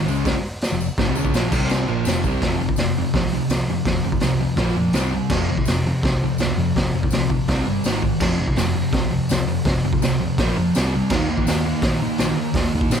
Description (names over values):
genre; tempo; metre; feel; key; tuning
garage rock duo or trio; 166 BPM; 4/4; straight; F minor; A4 = 440 Hz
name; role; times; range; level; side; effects
fuzz guitar; riff; 0.0-13.0 s; F2 to Eb4; -21 LUFS; equal; distortion
hollow-body short-scale picked electric bass; bass; 0.0-13.0 s; F1 to Eb3; -26 LUFS; equal; tube saturation
tambourine; percussion; 0.1-13.0 s; none; -37 LUFS; left 4 dB; none
raw garage drum kit; drums; 0.3-13.0 s; crash cymbal, hi-hat, kick drum, snare drum; -22 LUFS; equal; none
room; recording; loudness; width
light reverb; none; -18 LUFS; side -7 dB against mid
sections
0.0-2.4 A section; 2.4-13.0 B section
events
none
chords
0.0 Fm; 1.5 C5; 1.9 F5; 4.6 Bb5; 5.0 C5; 5.3 F5; 7.5 C5; 7.9 Ab5; 8.2 F5; 10.4 Bb5; 10.7 C5; 11.1 Eb5